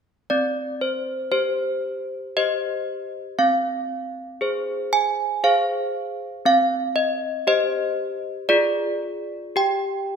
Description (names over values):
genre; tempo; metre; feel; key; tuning
classical, tune for handbells; 59 BPM; 3/4; straight; C minor; A4 = 441 Hz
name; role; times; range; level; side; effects
desk bells; solo; 0.3-10.2 s; C4 to Ab5; -21 LUFS; equal; none
room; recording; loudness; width
wet recital hall reverb, RT60 1.8 s; minimal, uncompressed stereo recording; -21 LUFS; side -6 dB against mid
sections
0.3-10.2 A section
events
none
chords
0.3 Cm; 3.4 Fm/C; 6.4 Cm; 8.5 Ddim/F; 9.6 N.C.